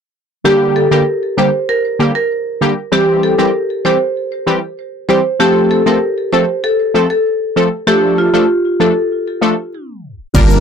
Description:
dancehall; 97 BPM; 4/4; straight; G dorian; A4 = 440 Hz
synth brass stab; accompaniment; 0.4-10.6 s; D3 to Bb4; -13 LUFS; left 1 dB; chorus
marimba with hard mallets; melody; 0.5-10.2 s; F4 to C5; -14 LUFS; right 1 dB; ping-pong delay
hollow soft pad; sustained chords; 10.3-10.6 s; G3 to Bb4; -19 LUFS; right 3 dB; chorus, sidechain pumping
organ-like FM bass; bass; 10.3-10.6 s; G1; -11 LUFS; equal; transformer saturation
afro-pop drum kit; drums; 10.3-10.5 s; crash cymbal, hi-hat, kick drum; -13 LUFS; equal
tube shaker; percussion; 10.3-10.6 s; -31 LUFS; right 13 dB
impact; sound effects; 10.3-10.6 s; -18 LUFS; equal
light reverb; blown-out, overdriven recording, overdrive, tape stop; -12 LUFS; side -7 dB against mid
0.4-10.3 A section
tape stop 9.7-10.3; impact 10.3
0.4 Gm; 2.9 C; 5.4 F; 7.9 Dm

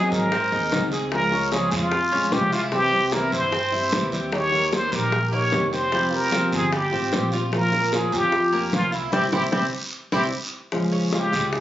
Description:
latin, Cuban son and guajira; 150 BPM; 4/4; straight; A4 = 440 Hz
trumpet with plunger mute; melody; 0.0-11.6 s; E4 to Db5; -23 LUFS; equal; plate reverb
flamenco guitar; accompaniment; 0.0-11.6 s; C3 to Ab4; -26 LUFS; left 1 dB
Cuban tres; arpeggios; 0.0-11.6 s; G3 to Db5; -29 LUFS; right 2 dB
upright bass; bass; 0.0-11.6 s; F1 to Ab2; -30 LUFS; right 1 dB
bongos; percussion; 0.1-11.6 s; -29 LUFS; left 2 dB
guiro; percussion; 0.1-11.6 s; -33 LUFS; right 2 dB
moderate studio reverb, RT60 0.9 s; recorded on a phone in the room, club reverb, compression, nothing above 7.6 kHz; -20 LUFS; side -13 dB against mid
0.0-10.7 A section
band accent 9.1-10.7; drum fill 10.5
0.0 Ab7; 1.1 Db; 2.7 C; 4.3 Eb; 5.9 Fsus2; 7.5 Bbm; 9.1 C; 10.7 Db

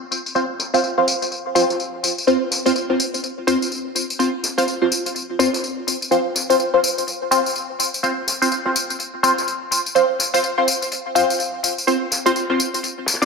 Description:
bass house; 125 BPM; 4/4; swing 61% on 16ths; A4 = 442 Hz
damped 70s drum kit; drums; 0.1-13.3 s; hi-hat, snare drum; -36 LUFS; left 2 dB; high-pass filter on hats, low-pass filter on hats, high-pass filter on snare, low-pass filter on snare, high-pass filter on room, low-pass filter on room
tambourine; drums; 0.1-13.3 s; -23 LUFS; left 2 dB; low-pass filter on snare, low-pass filter on perc, low-pass filter on hats, low-pass filter on room
band-passed chord stab; stabs; 0.4-13.3 s; C4 to D5; -19 LUFS; equal; phaser, analog chorus, tape echo
wet plate reverb, RT60 1.8 s, digital ambience; dreamy mix soaked in reverb; -17 LUFS; side -4 dB against mid
0.0-13.3 A section
filter sweep on synth stab 0.0-13.3
0.0 F5

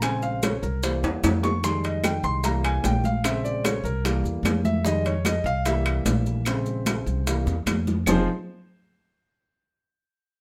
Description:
Afro-Cuban jazz; 149 BPM; 4/4; straight; F harmonic minor; A4 = 440 Hz
warm concert grand piano; accompaniment; 0.0-8.3 s; Db3 to Db6; -29 LUFS; equal
upright bass; bass; 0.0-8.3 s; F1 to F2; -29 LUFS; equal
bongos; percussion; 0.0-8.2 s; -36 LUFS; equal
claves; percussion; 0.0-8.2 s; -35 LUFS; equal
congas; percussion; 0.0-8.2 s; -31 LUFS; equal
maracas; percussion; 0.0-8.2 s; -39 LUFS; equal
timbales; percussion; 0.0-8.2 s; -32 LUFS; equal
light reverb; -24 LUFS; mono
0.0-8.1 A section; 8.1-9.7 B section
grand piano solo 0.0-8.1; drum fill 1.0-1.6, 7.5-8.1
0.0 Bbm7; 0.8 C7; 1.6 Fm7; 2.4 C7; 3.2 Bbm7; 4.1 C7; 4.9 Fm7; 5.7 C7; 6.5 Bbm7; 7.3 C7; 8.1 Fm7

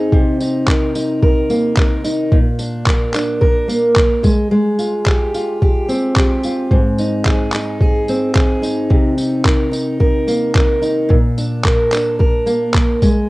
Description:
acoustic pop; 109 BPM; 4/4; straight; A4 = 443 Hz
fingerpicked steel-string acoustic guitar; accompaniment; 0.0-13.3 s; Ab2 to Bb4; -16 LUFS; equal
boom bap sampler-style drum kit; drums; 0.1-13.1 s; handclaps, kick drum, tambourine; -15 LUFS; equal
light reverb, digital ambience; home recording on cassette; -13 LUFS; side -20 dB against mid
0.0-13.3 A section
0.1 Cm7; 2.3 Bb; 4.2 Fmadd9/Ab; 6.7 Ab; 8.9 Cm7; 11.1 Bb

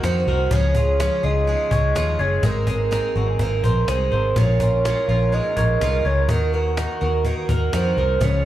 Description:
jangly indie pop; 125 BPM; 4/4; straight; A4 = 440 Hz
soft octave-layered synth lead; melody; 0.0-8.4 s; Bb4 to Eb5; -24 LUFS; right 2 dB; chorus, tremolo, slapback echo, tape echo
picked twelve-string acoustic guitar; accompaniment; 0.0-8.4 s; Bb2 to Db5; -25 LUFS; right 6 dB; slapback echo
electric guitar through a small old amp; arpeggios; 0.0-8.4 s; Bb2 to Db5; -28 LUFS; left 4 dB; phaser, slapback echo
vintage muted fingered electric bass; bass; 0.0-8.4 s; Gb1 to F2; -21 LUFS; left 1 dB
cajon; drums; 0.0-8.3 s; -27 LUFS; equal
small room ambience; live gig heard through the venue's PA, club reverb; -18 LUFS; side -13 dB against mid
0.0-8.4 A section
0.0 Ebm; 0.5 Db; 2.4 Abadd9; 4.4 Bbm7; 6.3 Ebm

